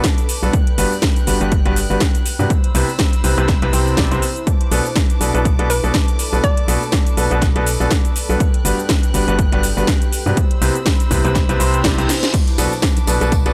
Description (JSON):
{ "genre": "piano house", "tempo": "122 BPM", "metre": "4/4", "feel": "swing 56% on 16ths", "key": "B minor", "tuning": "A4 = 437 Hz", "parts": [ { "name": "warm studio string section", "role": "sustained chords", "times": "0.0-13.5 s", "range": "B4 to F#6", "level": "-32 LUFS", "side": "equal", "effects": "sidechain pumping" }, { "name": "clear upright piano", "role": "riff", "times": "0.0-13.5 s", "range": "G2 to D5", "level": "-23 LUFS", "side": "equal", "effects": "sidechain pumping" }, { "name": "electronic kick drum", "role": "drums", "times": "0.0-13.4 s", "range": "none", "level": "-20 LUFS", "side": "equal", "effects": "overdrive" }, { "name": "house drum kit", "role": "drums", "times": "0.0-13.5 s", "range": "crash cymbal, hi-hat, shaker, snare drum", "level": "-25 LUFS", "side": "equal", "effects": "overdrive" }, { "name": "deep dark ambient pad", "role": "texture", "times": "0.2-13.5 s", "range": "E4 to D5", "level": "-34 LUFS", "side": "equal", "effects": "none" }, { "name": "organ-like FM bass", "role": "bass", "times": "0.4-13.5 s", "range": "G1 to G2", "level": "-22 LUFS", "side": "equal", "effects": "tube saturation, sidechain pumping" }, { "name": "hollow square pluck", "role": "melody", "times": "5.7-6.9 s", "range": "B4 to D5", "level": "-27 LUFS", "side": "equal", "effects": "chorus, analog delay" }, { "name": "reverse cymbal", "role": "sound effects", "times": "11.8-12.3 s", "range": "none", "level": "-30 LUFS", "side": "equal", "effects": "none" }, { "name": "tambourine and congas", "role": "percussion", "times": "12.3-13.5 s", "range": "none", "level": "-32 LUFS", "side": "equal", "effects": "none" } ], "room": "little or no reverb", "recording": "dry, gritty hardware recording, faint mains hum", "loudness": "-17 LUFS", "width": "mono", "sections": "0.0-13.5 A section", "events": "reverse cymbal 11.8-12.3; drum fill 12.1", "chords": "0.0 Bm7; 0.5 Gmaj7; 2.5 Cmaj7; 4.5 Bm7; 8.4 Gmaj7; 10.4 Cmaj7; 12.3 Bm7" }